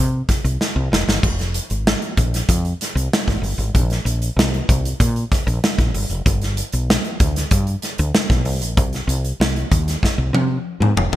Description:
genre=polished 1980s jazz-funk pop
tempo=96 BPM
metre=4/4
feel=straight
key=unclear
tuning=A4 = 438 Hz
part: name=woody fretless electric bass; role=bass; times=0.0-11.2 s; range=F1 to C3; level=-20 LUFS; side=equal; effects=none
part: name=modern studio drum kit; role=drums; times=0.3-11.2 s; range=hi-hat, kick drum, snare drum, splash cymbal, toms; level=-18 LUFS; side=equal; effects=gated reverb
room=light reverb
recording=bright 1980s-style digital production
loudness=-17 LUFS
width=side -14 dB against mid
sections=0.0-11.2 A section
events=drum fill 0.6-1.2, 10.0-11.2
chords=none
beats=0.61 | 1.23 1.86 2.49 3.12 | 3.75 4.37 5.00 5.63 | 6.26 6.88 7.51 8.14 | 8.77 9.40 10.03 10.66

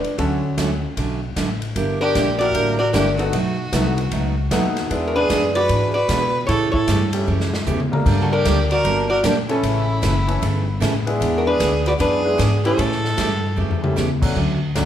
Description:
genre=country, western swing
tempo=152 BPM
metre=4/4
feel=swing 64% on 8ths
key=unclear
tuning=A4 = 440 Hz
part: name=archtop guitar, miked and amplified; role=melody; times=0.0-13.9 s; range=C#4 to D5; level=-21 LUFS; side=equal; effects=none
part: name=upright bass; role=bass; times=0.0-14.9 s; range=F#1 to B2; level=-22 LUFS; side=left 1 dB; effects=none
part: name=swinging big-band drum kit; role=drums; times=0.0-14.9 s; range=crash cymbal, hi-hat, kick drum, ride cymbal, snare drum, toms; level=-26 LUFS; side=left 1 dB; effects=none
part: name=clear upright piano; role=accompaniment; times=0.2-14.9 s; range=D3 to Bb4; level=-26 LUFS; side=left 2 dB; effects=none
part: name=picked steel-string acoustic guitar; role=accompaniment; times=0.2-14.9 s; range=B2 to A4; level=-25 LUFS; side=right 4 dB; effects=none
part: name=clear fiddle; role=second line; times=2.0-13.9 s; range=E4 to B4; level=-25 LUFS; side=right 2 dB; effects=none
room=moderate large studio reverb, RT60 0.9 s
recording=band playing live in one room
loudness=-17 LUFS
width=side -10 dB against mid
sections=0.0-1.8 A section; 1.8-14.4 B section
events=drum fill 7.3-8.1, 13.6-14.0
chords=0.2 Dmaj7; 1.8 Gm6; 3.3 B7; 4.9 E7; 6.5 A7; 8.1 Gmadd9; 9.6 A; 11.2 E7; 12.8 A7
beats=| 0.18 0.57 0.97 1.36 | 1.76 2.15 2.55 2.94 | 3.33 3.73 4.12 4.52 | 4.91 5.30 5.70 6.09 | 6.49 6.88 7.27 7.67 | 8.06 8.46 8.85 9.24 | 9.64 10.03 10.42 10.82 | 11.21 11.61 12.00 12.39 | 12.79 13.18 13.57 13.97 | 14.36 14.76

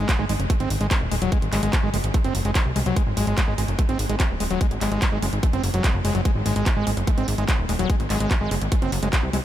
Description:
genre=psychedelic trance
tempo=146 BPM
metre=4/4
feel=straight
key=unclear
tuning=A4 = 440 Hz
part: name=screaming distorted acid line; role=riff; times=0.0-9.4 s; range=F#3 to B#3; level=-26 LUFS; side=moving between left 5 dB and right 4 dB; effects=distortion, chorus, auto-pan, sidechain pumping, diffuse ambient delay
part: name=plucky analog bass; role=bass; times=0.0-9.4 s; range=D#1 to B#1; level=-25 LUFS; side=equal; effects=none
part: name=drum and bass drum kit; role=drums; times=0.1-9.4 s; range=handclaps, hi-hat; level=-29 LUFS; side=right 1 dB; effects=none
part: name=electronic kick drum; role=drums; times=0.1-9.2 s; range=none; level=-21 LUFS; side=equal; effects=none
room=light reverb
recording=none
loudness=-20 LUFS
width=side -12 dB against mid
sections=0.0-9.4 A section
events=none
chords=0.0 G#5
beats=0.09 0.50 0.91 | 1.32 1.73 2.14 2.55 | 2.96 3.38 3.79 4.20 | 4.61 5.02 5.43 5.84 | 6.25 6.66 7.07 7.49 | 7.90 8.31 8.72 9.13

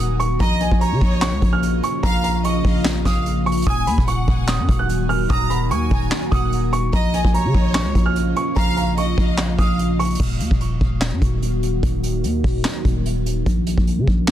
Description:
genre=hip hop, trap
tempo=147 BPM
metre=4/4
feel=half-time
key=unclear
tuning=A4 = 440 Hz
part: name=dark baby grand piano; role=melody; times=0.0-10.2 s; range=Ab5 to Gb6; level=-25 LUFS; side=right 3 dB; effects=digital delay
part: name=deep dark ambient pad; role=sustained chords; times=0.0-14.3 s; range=Db3 to Bb4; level=-26 LUFS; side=equal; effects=chorus, built-in reverb
part: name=growling 808-style bass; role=bass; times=0.0-14.3 s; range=Eb1 to Db3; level=-21 LUFS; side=equal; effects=none
part: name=vintage brush drum kit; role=drums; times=0.2-14.3 s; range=crash cymbal, handclaps, hi-hat, kick drum, snare drum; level=-21 LUFS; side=equal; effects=none
part: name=rich studio violin section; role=second line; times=0.4-9.8 s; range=Db5 to Bb5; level=-28 LUFS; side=equal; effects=digital delay
room=small room ambience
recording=dense, heavily limited modern master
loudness=-17 LUFS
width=side -11 dB against mid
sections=0.0-10.2 A section; 10.2-14.3 B section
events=none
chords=0.4 Bbm; 3.7 Ebm; 6.9 Bbm; 10.2 Ebm; 13.5 Bbm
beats=| 0.40 0.81 1.22 1.63 | 2.04 2.44 2.85 3.26 | 3.67 4.08 4.48 4.89 | 5.30 5.71 6.12 6.53 | 6.93 7.34 7.75 8.16 | 8.57 8.97 9.38 9.79 | 10.20 10.61 11.01 11.42 | 11.83 12.24 12.65 13.05 | 13.46 13.87 14.28

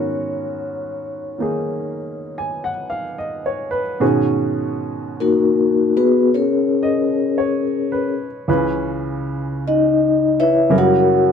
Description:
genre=jazz ballad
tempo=54 BPM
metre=4/4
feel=swing 68% on 8ths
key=G# minor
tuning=A4 = 439 Hz
part: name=vibraphone with soft mallets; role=melody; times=0.0-11.3 s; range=A#3 to F#5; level=-16 LUFS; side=left 3 dB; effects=none
part: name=warm upright piano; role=accompaniment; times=0.0-11.3 s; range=C#2 to G#5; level=-22 LUFS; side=right 2 dB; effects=none
room=light reverb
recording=close, detailed microphones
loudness=-16 LUFS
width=side -7 dB against mid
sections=0.0-4.0 A section; 4.0-11.3 B section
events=vibraphone solo 4.0-11.3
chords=0.0 G#m11; 8.5 C#m7; 10.7 F#7b9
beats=0.66 1.77 2.90 | 4.02 5.14 6.25 7.37 | 8.48 9.60 10.71

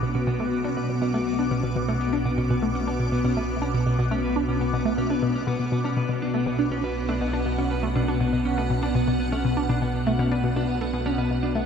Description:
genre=ambient, sequencer-driven space music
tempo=121 BPM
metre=4/4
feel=straight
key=B minor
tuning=A4 = 440 Hz
part: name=evolving wavetable pad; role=sustained chords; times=0.0-11.7 s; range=B2 to D6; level=-26 LUFS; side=left 1 dB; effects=ensemble chorus, built-in reverb, phaser, shimmer reverb
part: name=hollow square pluck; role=riff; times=0.0-11.6 s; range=B2 to D4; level=-27 LUFS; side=left 1 dB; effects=chorus, phaser, analog delay, shimmer reverb
part: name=analog drone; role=bass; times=0.0-11.7 s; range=B1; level=-31 LUFS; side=right 1 dB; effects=chorus
part: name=clean electric guitar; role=arpeggios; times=0.1-11.6 s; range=B3 to B4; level=-31 LUFS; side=moving between left 1 dB and right 6 dB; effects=auto-pan, analog delay, shimmer reverb
room=wet huge ambient reverb, RT60 7.0 s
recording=dark, warm production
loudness=-22 LUFS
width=side -7 dB against mid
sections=0.0-11.7 A section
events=none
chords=0.0 Bm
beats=0.27 0.77 1.26 | 1.76 2.26 2.75 3.25 | 3.74 4.24 4.74 5.23 | 5.73 6.22 6.72 7.21 | 7.71 8.21 8.70 9.20 | 9.69 10.19 10.69 11.18

